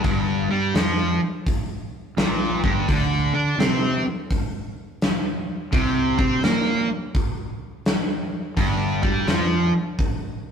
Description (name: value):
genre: blues rock power trio and southern rock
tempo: 84 BPM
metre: 4/4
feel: swing 65% on 8ths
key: unclear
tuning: A4 = 436 Hz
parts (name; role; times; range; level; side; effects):
- overdriven electric guitar; riff; 0.0-9.7 s; G2 to D4; -22 LUFS; equal; none
- fuzz fingered electric bass; bass; 0.0-9.7 s; G1 to D3; -27 LUFS; right 1 dB; overdrive
- big rock drum kit; drums; 0.0-10.2 s; hi-hat, kick drum, snare drum; -24 LUFS; equal; none
room: moderate stone room reverb, RT60 1.6 s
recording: rough rehearsal-room recording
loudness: -20 LUFS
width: side -7 dB against mid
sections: 0.0-10.5 A section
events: none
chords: 0.0 Gm7; 2.9 Csus2/D; 5.7 Bbsus2/C; 8.6 G7(no3)